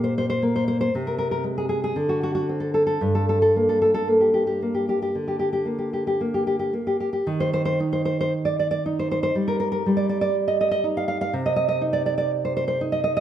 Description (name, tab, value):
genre	romantic piece for solo classical guitar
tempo	55-62 BPM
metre	4/4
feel	rubato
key	unclear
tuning	A4 = 441 Hz
part	nylon-string guitar	solo	0.0-13.2 s	G2 to F5	-20 LUFS	equal	none
room	moderate recital hall reverb, RT60 1.6 s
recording	none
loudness	-21 LUFS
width	side -10 dB against mid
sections	0.0-7.3 A section; 7.3-13.2 B section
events	none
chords	0.0 N.C.; 0.9 Ab/C; 1.9 D7; 3.0 Gm; 7.3 Eb; 11.3 Cmadd9